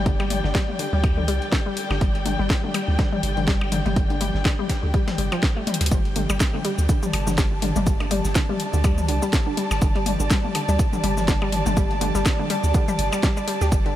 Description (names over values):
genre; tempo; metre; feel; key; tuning
minimal techno; 123 BPM; 4/4; swing 57% on 16ths; unclear; A4 = 441 Hz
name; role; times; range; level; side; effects
punchy sub bass; bass; 0.0-14.0 s; G1 to D2; -24 LUFS; equal; sidechain pumping
dark chamber string section; texture; 0.0-14.0 s; G4 to A5; -29 LUFS; equal; sidechain pumping
hollow square pluck; riff; 0.1-13.9 s; D3 to G4; -28 LUFS; left 1 dB; chorus, phaser, sidechain pumping, analog delay
breakbeat sampler-style drum kit; drums; 0.1-14.0 s; hi-hat, snare drum; -38 LUFS; equal; none
electronic kick drum; drums; 0.1-13.8 s; none; -21 LUFS; equal; overdrive
electronic percussion blips and toms; percussion; 0.2-13.2 s; none; -29 LUFS; left 4 dB; overdrive, diffuse ambient delay
house drum kit; drums; 0.3-13.8 s; cabasa, hi-hat, snare drum; -30 LUFS; equal; overdrive
room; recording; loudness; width
light reverb; none; -19 LUFS; side -12 dB against mid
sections
0.0-5.9 A section; 5.9-14.0 B section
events
drum fill 5.7; drop 5.9-14.0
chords
0.0 G5